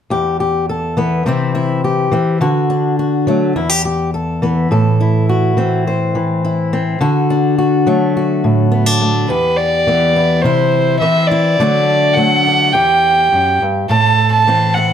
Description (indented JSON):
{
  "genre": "folk",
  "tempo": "104 BPM",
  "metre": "4/4",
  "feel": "straight",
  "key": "E minor",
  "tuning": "A4 = 440 Hz",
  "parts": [
    { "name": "fingerpicked steel-string acoustic guitar", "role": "accompaniment", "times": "0.1-14.9 s", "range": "E2 to C5", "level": "-14 LUFS", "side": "left 1 dB", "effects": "none" },
    { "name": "warm fiddle", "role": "melody", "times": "9.3-14.9 s", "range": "B4 to A5", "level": "-12 LUFS", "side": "right 2 dB", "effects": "plate reverb" }
  ],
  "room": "moderate large studio reverb, RT60 0.9 s",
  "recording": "none",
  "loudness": "-12 LUFS",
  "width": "side -8 dB against mid",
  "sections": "0.1-9.3 A section; 9.3-14.9 B section",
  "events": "none",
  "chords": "0.1 Em; 1.3 C; 2.4 D; 3.6 Em; 4.7 Am; 7.0 D; 9.3 Em; 10.5 C; 11.6 D; 12.8 Em; 13.9 Am"
}